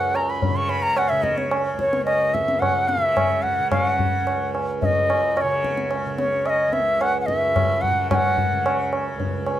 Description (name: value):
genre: indian classical, Hindustani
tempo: 109 BPM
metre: 4/4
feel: straight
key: unclear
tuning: A4 = 440 Hz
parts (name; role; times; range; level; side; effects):
- bright reedy bansuri; melody; 0.0-8.9 s; C#5 to C#6; -21 LUFS; equal; plate reverb
- tanpura; drone; 0.0-9.6 s; C#2 to C#3; -28 LUFS; right 2 dB; none
- tabla; percussion; 0.1-9.6 s; none; -24 LUFS; equal; none
room: moderate small room reverb, RT60 0.6 s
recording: none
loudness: -19 LUFS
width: side -12 dB against mid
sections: 0.0-9.6 A section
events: none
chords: none